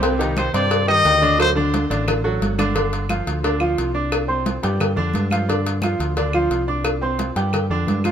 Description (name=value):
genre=latin, salsa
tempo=176 BPM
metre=4/4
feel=straight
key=unclear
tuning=A4 = 437 Hz
part: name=clear baby grand piano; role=accompaniment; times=0.0-8.1 s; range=C3 to D6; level=-22 LUFS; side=right 2 dB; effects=none
part: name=fingered electric bass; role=bass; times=0.0-8.1 s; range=G1 to G2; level=-23 LUFS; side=equal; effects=none
part: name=congas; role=percussion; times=0.0-8.1 s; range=none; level=-28 LUFS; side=right 1 dB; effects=none
part: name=cowbell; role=percussion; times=0.0-8.1 s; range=none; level=-26 LUFS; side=left 2 dB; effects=none
part: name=warm trumpet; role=melody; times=0.4-1.5 s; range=C5 to Eb5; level=-19 LUFS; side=left 2 dB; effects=none
part: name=claves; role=percussion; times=0.4-8.1 s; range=none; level=-32 LUFS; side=equal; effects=none
room=light reverb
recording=minimal, uncompressed stereo recording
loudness=-17 LUFS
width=side -8 dB against mid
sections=0.0-2.8 A section; 2.8-8.1 B section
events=trumpet solo 0.0-2.8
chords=0.0 Cm; 1.4 D; 2.8 G5; 4.1 Csus2